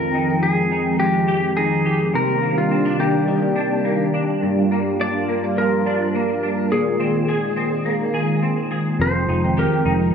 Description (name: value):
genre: dream pop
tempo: 105 BPM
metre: 4/4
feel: straight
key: F dorian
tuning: A4 = 440 Hz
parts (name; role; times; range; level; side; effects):
- clean lap steel guitar; melody; 0.0-10.1 s; F4 to D5; -22 LUFS; left 1 dB; plate reverb, digital delay
- warm analog pad; sustained chords; 0.0-10.1 s; C3 to G5; -21 LUFS; right 1 dB; chorus
- semi-hollow electric guitar; arpeggios; 0.0-10.1 s; F2 to Ab4; -23 LUFS; left 1 dB; ensemble chorus, digital delay
- vintage muted picked electric bass; bass; 9.0-10.1 s; F1; -22 LUFS; equal; none
room: wet studio reverb, RT60 0.6 s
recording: nothing above 8.0 kHz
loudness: -17 LUFS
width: side -7 dB against mid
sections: 0.0-10.1 A section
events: none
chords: 0.0 Fm9; 2.1 Cm9; 4.4 Gm7; 6.7 Bb9sus4; 9.0 Fm9